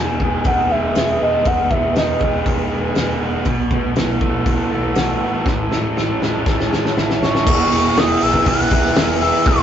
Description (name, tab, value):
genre	rock, shoegaze and dream pop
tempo	120 BPM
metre	4/4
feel	straight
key	E major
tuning	A4 = 440 Hz
part	pure breathy sine lead	melody	0.0-2.5, 7.2-9.6 s	D#5 to F#6	-18 LUFS	equal	chorus
part	dark analog pad	sustained chords	0.1-9.6 s	B4 to E6	-26 LUFS	equal	chorus
part	overdriven electric guitar	riff	0.0-9.6 s	E2 to G#4	-23 LUFS	left 1 dB	none
part	raw garage guitar	riff	0.0-9.6 s	E2 to G#4	-22 LUFS	right 3 dB	overdrive
part	growling picked electric bass	bass	0.0-9.6 s	E1 to B1	-26 LUFS	equal	overdrive
part	loose indie drum kit	drums	0.2-9.6 s	crash cymbal, hi-hat, kick drum, snare drum	-20 LUFS	left 1 dB	none
room	wet small room reverb, RT60 0.5 s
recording	rough rehearsal-room recording, nothing above 7.7 kHz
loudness	-15 LUFS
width	side -9 dB against mid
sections	0.0-7.5 A section; 7.5-9.6 B section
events	drum fill 5.5-7.5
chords	0.0 Emaj7; 3.5 B7sus4; 5.5 Amaj7; 7.5 E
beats	0.46 0.96 | 1.46 1.96 2.46 2.96 | 3.46 3.96 4.46 4.96 | 5.46 5.96 6.46 6.96 | 7.46 7.96 8.46 8.96 | 9.46